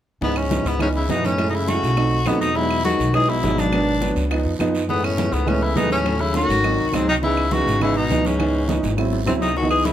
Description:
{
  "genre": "Afro-Cuban jazz",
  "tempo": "206 BPM",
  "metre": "4/4",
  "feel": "straight",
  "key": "C# minor",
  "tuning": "A4 = 440 Hz",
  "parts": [
    { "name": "clear tenor saxophone", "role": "melody", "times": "0.2-9.9 s", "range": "B3 to G#4", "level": "-22 LUFS", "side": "left 1 dB", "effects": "plate reverb" },
    { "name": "breathy baritone saxophone", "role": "second line", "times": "0.2-9.9 s", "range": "F#2 to E3", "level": "-26 LUFS", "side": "left 5 dB", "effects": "none" },
    { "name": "warm upright piano", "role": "accompaniment", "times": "0.2-9.9 s", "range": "E3 to E4", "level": "-23 LUFS", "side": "right 4 dB", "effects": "none" },
    { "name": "upright bass", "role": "bass", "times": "0.2-9.9 s", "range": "G#1 to F#2", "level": "-24 LUFS", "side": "equal", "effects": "none" },
    { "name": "bongos", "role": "percussion", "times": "0.2-9.9 s", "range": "none", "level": "-32 LUFS", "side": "left 5 dB", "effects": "none" },
    { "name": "congas", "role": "percussion", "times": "0.2-9.9 s", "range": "none", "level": "-31 LUFS", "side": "equal", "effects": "none" },
    { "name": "guiro", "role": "percussion", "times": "0.2-9.9 s", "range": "none", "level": "-36 LUFS", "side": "right 4 dB", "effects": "none" },
    { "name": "claves", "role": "percussion", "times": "0.4-9.9 s", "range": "none", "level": "-33 LUFS", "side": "right 4 dB", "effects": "none" }
  ],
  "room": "light reverb",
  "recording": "none",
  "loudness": "-18 LUFS",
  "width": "side -11 dB against mid",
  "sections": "0.2-9.6 A section",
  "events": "drum fill 8.7-9.6",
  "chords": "0.2 C#m7; 1.4 F#m7; 2.0 B7b9; 2.6 Emaj7; 3.7 G#m7b5; 4.3 C#7; 4.9 F#m11; 6.1 D#m7b5; 6.6 G#7; 7.2 C#m7; 9.0 G#7b13"
}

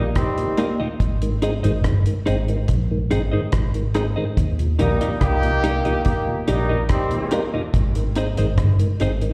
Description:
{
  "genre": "roots reggae",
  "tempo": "71 BPM",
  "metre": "4/4",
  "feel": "straight",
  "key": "Eb major",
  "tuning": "A4 = 440 Hz",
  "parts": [
    { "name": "warm horn section", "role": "second line", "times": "0.0-7.5 s", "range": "Eb3 to G4", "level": "-26 LUFS", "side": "equal", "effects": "dub echo, plate reverb, slapback echo" },
    { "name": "clean electric guitar", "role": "accompaniment", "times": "0.0-9.1 s", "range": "Bb3 to Eb5", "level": "-28 LUFS", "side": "equal", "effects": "dub echo, plate reverb, slapback echo" },
    { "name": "tonewheel organ", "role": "accompaniment", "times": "0.0-9.3 s", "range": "Eb2 to Eb4", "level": "-29 LUFS", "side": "equal", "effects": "slow rotary speaker, plate reverb, slapback echo" },
    { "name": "vintage muted fingered electric bass", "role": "bass", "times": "0.0-9.3 s", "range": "G1 to Eb2", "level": "-23 LUFS", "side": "equal", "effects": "none" },
    { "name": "deep reggae drum kit", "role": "drums", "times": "0.2-9.3 s", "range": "hi-hat, kick drum, rim click", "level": "-24 LUFS", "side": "equal", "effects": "none" }
  ],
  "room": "light reverb",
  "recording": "live gig heard through the venue's PA, recital hall reverb",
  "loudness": "-21 LUFS",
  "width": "mono",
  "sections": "0.0-9.3 A section",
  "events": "none",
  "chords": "0.0 Eb; 1.0 Ab; 4.4 Eb; 7.7 Ab"
}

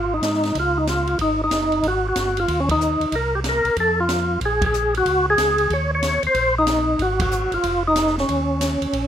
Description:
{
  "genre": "soul jazz organ trio",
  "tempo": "186 BPM",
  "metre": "4/4",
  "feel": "swing 64% on 8ths",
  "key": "unclear",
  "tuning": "A4 = 440 Hz",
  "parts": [
    { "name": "percussive tonewheel organ", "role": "melody", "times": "0.0-9.1 s", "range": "Db4 to Db5", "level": "-19 LUFS", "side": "equal", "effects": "slow rotary speaker, overdrive, chorus vibrato" },
    { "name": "mellow tonewheel organ", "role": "bass", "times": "0.0-9.1 s", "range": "F1 to Ab2", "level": "-26 LUFS", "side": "equal", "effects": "slow rotary speaker" },
    { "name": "open jazz drum kit", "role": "drums", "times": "0.2-9.0 s", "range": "hi-hat, kick drum, ride cymbal, snare drum", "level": "-28 LUFS", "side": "right 1 dB", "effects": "none" }
  ],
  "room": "light reverb, studio ambience",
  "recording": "rough home demo mix",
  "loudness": "-18 LUFS",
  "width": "side -9 dB against mid",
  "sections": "0.0-9.1 A section",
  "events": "band accent 2.6, 4.6, 7.2",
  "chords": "0.0 Db; 1.8 Ab5; 3.1 Gmadd11/C (rootless); 3.8 F; 4.4 Bbm7; 5.7 Eb5; 7.0 Gbsus2/Ab; 7.6 Dbadd9/F; 8.3 Eb5"
}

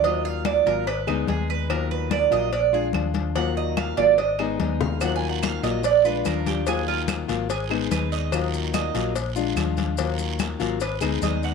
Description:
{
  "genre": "latin, Cuban son and guajira",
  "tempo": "145 BPM",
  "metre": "4/4",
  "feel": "straight",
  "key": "Eb harmonic minor",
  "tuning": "A4 = 440 Hz",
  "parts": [
    { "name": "nylon-string guitar", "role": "accompaniment", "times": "0.0-11.5 s", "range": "Eb3 to Ab4", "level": "-28 LUFS", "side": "left 12 dB", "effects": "none" },
    { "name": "Cuban tres", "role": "arpeggios", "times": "0.0-11.5 s", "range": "Eb4 to Ab5", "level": "-24 LUFS", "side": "right 10 dB", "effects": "none" },
    { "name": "hollow-body short-scale fingered electric bass", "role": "bass", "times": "0.0-11.5 s", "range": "Ab1 to Eb2", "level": "-28 LUFS", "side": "equal", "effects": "none" },
    { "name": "congas", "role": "percussion", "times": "0.0-11.5 s", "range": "none", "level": "-31 LUFS", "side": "left 9 dB", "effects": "none" },
    { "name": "cowbell and bongos", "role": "percussion", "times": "0.0-11.4 s", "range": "none", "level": "-33 LUFS", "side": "left 10 dB", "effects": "none" },
    { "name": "claves", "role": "percussion", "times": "0.5-11.2 s", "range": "none", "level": "-33 LUFS", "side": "right 12 dB", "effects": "none" },
    { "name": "guiro", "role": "percussion", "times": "5.0-11.5 s", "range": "none", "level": "-36 LUFS", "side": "right 12 dB", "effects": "none" },
    { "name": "maracas", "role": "percussion", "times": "5.0-11.5 s", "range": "none", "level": "-40 LUFS", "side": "left 13 dB", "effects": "none" }
  ],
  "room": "moderate echo chamber reverb, RT60 1.6 s, small room ambience",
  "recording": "1960s-style stereo with parts hard left and right",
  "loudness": "-21 LUFS",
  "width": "side -5 dB against mid",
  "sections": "0.0-11.5 A section",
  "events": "Cuban tres solo 0.0-11.5; drum fill 4.6-5.0",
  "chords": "0.0 Ebmadd9; 0.9 Abm; 1.7 Ebmadd9; 2.5 Bb7; 3.4 Ebmadd9; 4.2 Abm; 5.0 Ebmadd9; 5.8 Bb7; 6.7 Ebmadd9; 7.5 Abm; 8.3 Ebmadd9; 9.2 Bb7; 10.0 Ebmadd9; 10.8 Abm"
}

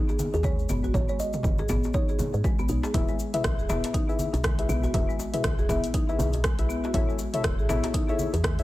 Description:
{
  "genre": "afro house",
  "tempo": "120 BPM",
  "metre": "4/4",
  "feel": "swing 58% on 16ths",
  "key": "unclear",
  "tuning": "A4 = 439 Hz",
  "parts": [
    { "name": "marimba with medium mallets", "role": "arpeggios", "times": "0.0-8.6 s", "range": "G#3 to G#4", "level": "-32 LUFS", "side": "left 1 dB", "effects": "sidechain pumping, dub echo" },
    { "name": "cabasa", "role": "percussion", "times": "0.1-8.6 s", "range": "none", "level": "-43 LUFS", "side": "left 5 dB", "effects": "none" },
    { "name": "djembe", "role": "percussion", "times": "0.1-8.4 s", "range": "none", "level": "-36 LUFS", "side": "left 1 dB", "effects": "none" },
    { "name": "congas", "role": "percussion", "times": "0.2-8.6 s", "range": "none", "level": "-35 LUFS", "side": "right 1 dB", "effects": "none" },
    { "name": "kalimba", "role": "melody", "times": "0.3-2.7 s", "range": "G#4 to D#5", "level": "-35 LUFS", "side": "right 3 dB", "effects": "dub echo" },
    { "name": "woody FM bass", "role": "bass", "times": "0.3-8.6 s", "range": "E1 to G#2", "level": "-29 LUFS", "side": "equal", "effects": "sidechain pumping" },
    { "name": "electronic kick drum", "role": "drums", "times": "0.4-8.6 s", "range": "none", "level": "-28 LUFS", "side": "equal", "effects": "small room reverb" },
    { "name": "deep house drum kit", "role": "drums", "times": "0.7-8.6 s", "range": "hi-hat, rim click, toms", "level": "-32 LUFS", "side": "equal", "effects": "small room reverb" },
    { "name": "deep mellow chord stab", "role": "stabs", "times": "2.9-8.6 s", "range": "E4 to E5", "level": "-31 LUFS", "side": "left 4 dB", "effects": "chorus, sidechain pumping, dub echo" }
  ],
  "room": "small room ambience",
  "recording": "none",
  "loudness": "-24 LUFS",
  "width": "side -16 dB against mid",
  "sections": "0.0-8.6 A section",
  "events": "none",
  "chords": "0.0 G#m; 2.9 E; 6.9 A"
}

